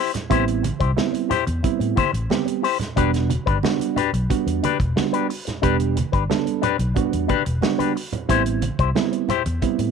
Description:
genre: funk.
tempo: 90 BPM.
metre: 4/4.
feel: straight.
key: A dorian.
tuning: A4 = 440 Hz.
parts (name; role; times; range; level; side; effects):
electric guitar with an envelope filter; accompaniment; 0.0-9.8 s; D4 to C5; -24 LUFS; left 14 dB; none.
warm soul drum kit; drums; 0.1-9.9 s; hi-hat, kick drum, snare drum; -26 LUFS; left 1 dB; none.
congas; percussion; 0.1-9.9 s; none; -30 LUFS; right 7 dB; none.
reed electric piano; stabs; 0.3-9.9 s; G3 to A4; -23 LUFS; right 12 dB; overdrive.
fingered electric bass; bass; 0.3-9.9 s; E1 to A2; -23 LUFS; left 1 dB; none.
room: light reverb, small room ambience.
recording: 1960s-style stereo with parts hard left and right.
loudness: -19 LUFS.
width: side -6 dB against mid.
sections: 0.0-9.9 A section.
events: none.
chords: 0.0 Am7; 3.0 Em7; 8.3 Am7.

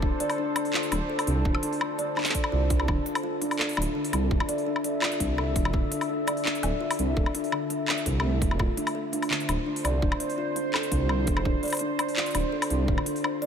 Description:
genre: half-time drum and bass.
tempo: 168 BPM.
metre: 4/4.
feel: half-time.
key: D minor.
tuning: A4 = 440 Hz.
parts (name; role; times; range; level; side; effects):
deep dark ambient pad; sustained chords; 0.0-13.5 s; D4 to E5; -32 LUFS; right 1 dB; chorus, built-in reverb, sidechain pumping.
kalimba; arpeggios; 0.0-13.5 s; D3 to D5; -30 LUFS; left 2 dB; diffuse ambient delay.
dark detuned saw bass; bass; 0.0-13.0 s; D1 to C2; -28 LUFS; right 1 dB; none.
electronic kick drum; drums; 0.0-13.0 s; none; -28 LUFS; right 1 dB; none.
drum and bass drum kit; drums; 0.2-13.5 s; handclaps, hi-hat, woodblock; -30 LUFS; left 2 dB; none.
room: moderate cathedral reverb, RT60 5.7 s.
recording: dreamy mix soaked in reverb.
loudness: -24 LUFS.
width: side -7 dB against mid.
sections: 0.0-13.5 A section.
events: none.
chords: 0.0 Dsus2.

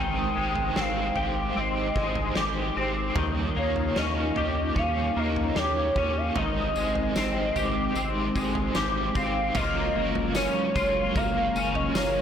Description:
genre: dream pop.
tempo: 75 BPM.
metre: 4/4.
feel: straight.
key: Ab major.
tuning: A4 = 440 Hz.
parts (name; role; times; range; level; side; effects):
hollow clarinet-like synth lead; melody; 0.0-12.2 s; Db5 to G5; -30 LUFS; right 1 dB; chorus, ping-pong delay.
overdriven electric guitar; accompaniment; 0.0-12.2 s; Eb3 to Db5; -33 LUFS; right 5 dB; tremolo, ensemble chorus.
string machine, cellos; sustained chords; 0.0-12.2 s; Eb3 to Bb4; -33 LUFS; equal; ensemble chorus.
twelve-string electric guitar; arpeggios; 0.0-12.2 s; Eb3 to G4; -29 LUFS; left 5 dB; ensemble chorus, ping-pong delay.
round analog bass; bass; 0.0-12.2 s; Gb1 to Eb2; -32 LUFS; equal; tube saturation.
huge arena drum kit; drums; 0.6-12.1 s; crash cymbal, kick drum, snare drum, tambourine, toms; -32 LUFS; equal; none.
room: moderate small room reverb, RT60 0.5 s.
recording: blown-out, overdriven recording, overdrive.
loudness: -24 LUFS.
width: side -8 dB against mid.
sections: 0.0-9.6 A section; 9.6-12.2 B section.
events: none.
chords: 0.0 Abmaj7; 3.2 Eb7; 6.4 Abmaj7; 9.6 Gbmaj7.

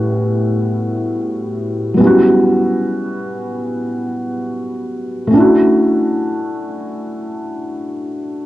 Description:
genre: hip hop.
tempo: free time.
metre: none.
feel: none.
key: E dorian.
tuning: A4 = 442 Hz.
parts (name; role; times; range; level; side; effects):
felt-muted upright piano; solo; 0.0-8.5 s; A2 to G4; -14 LUFS; equal; cassette tape, low-pass filter.
room: moderate spring reverb, RT60 1.9 s, studio ambience.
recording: cassette tape.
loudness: -14 LUFS.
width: side -15 dB against mid.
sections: 0.0-8.5 A section.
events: none.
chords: 0.0 A13; 2.0 Em69; 5.3 Dmaj9.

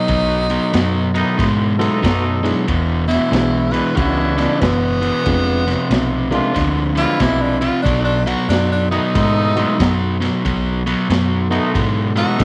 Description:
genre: electric blues shuffle.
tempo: 93 BPM.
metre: 4/4.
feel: swing 64% on 8ths.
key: B mixolydian.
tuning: A4 = 439 Hz.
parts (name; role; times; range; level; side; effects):
clear tenor saxophone; second line; 0.0-12.4 s; B3 to B4; -24 LUFS; equal; none.
overdriven semi-hollow guitar; riff; 0.0-12.4 s; E2 to G#3; -21 LUFS; equal; none.
vintage muted fingered electric bass; bass; 0.1-12.4 s; E1 to G#2; -24 LUFS; equal; none.
crunchy breakbeat drum kit; drums; 0.1-12.4 s; kick drum, ride cymbal, snare drum; -26 LUFS; equal; none.
mellow horn section; stabs; 1.1-12.4 s; D#3 to A4; -27 LUFS; equal; none.
barky reed electric piano; accompaniment; 1.8-12.4 s; F#3 to A#4; -27 LUFS; equal; none.
room: light reverb, small room ambience.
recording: none.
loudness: -17 LUFS.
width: mono.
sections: 0.0-12.4 A section.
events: tenor saxophone solo 0.0-12.4.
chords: 0.0 B7; 2.7 E7; 5.3 Fdim7; 7.8 B7.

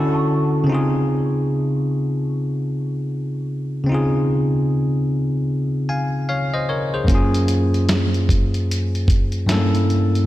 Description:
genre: lo-fi hip hop.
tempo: 75 BPM.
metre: 4/4.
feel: swing 62% on 16ths.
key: Db major.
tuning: A4 = 440 Hz.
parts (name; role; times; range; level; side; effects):
small celesta; second line; 0.0-0.7 s; F#5 to C#6; -31 LUFS; right 2 dB; ensemble chorus, diffuse ambient delay.
bell-like tine electric piano; accompaniment; 0.0-10.3 s; Gb2 to Ab5; -18 LUFS; equal; none.
dusty soul sampler-style drum kit; drums; 7.1-10.3 s; hi-hat, kick drum, snare drum; -20 LUFS; equal; none.
room: moderate lush hall reverb, RT60 2.1 s.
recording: dreamy mix soaked in reverb, cassette tape.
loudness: -18 LUFS.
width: side -15 dB against mid.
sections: 0.0-10.3 A section.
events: none.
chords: 0.0 Dmaj7; 0.7 Dbmaj7; 7.1 Gbmaj7; 9.5 Gdim7.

